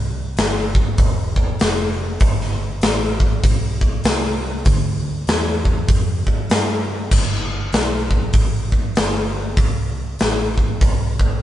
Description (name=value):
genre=blues rock power trio and southern rock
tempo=98 BPM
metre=4/4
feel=swing 62% on 8ths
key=G mixolydian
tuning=A4 = 440 Hz
part: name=vintage muted fingered electric bass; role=bass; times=0.0-11.4 s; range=E1 to G2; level=-24 LUFS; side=equal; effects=none
part: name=big rock drum kit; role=drums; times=0.4-11.3 s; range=crash cymbal, hi-hat, kick drum, snare drum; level=-17 LUFS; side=equal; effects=none
room=little or no reverb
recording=band playing live in one room, nothing above 10.7 kHz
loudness=-16 LUFS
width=side -12 dB against mid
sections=0.0-7.1 A section; 7.1-11.4 B section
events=none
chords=none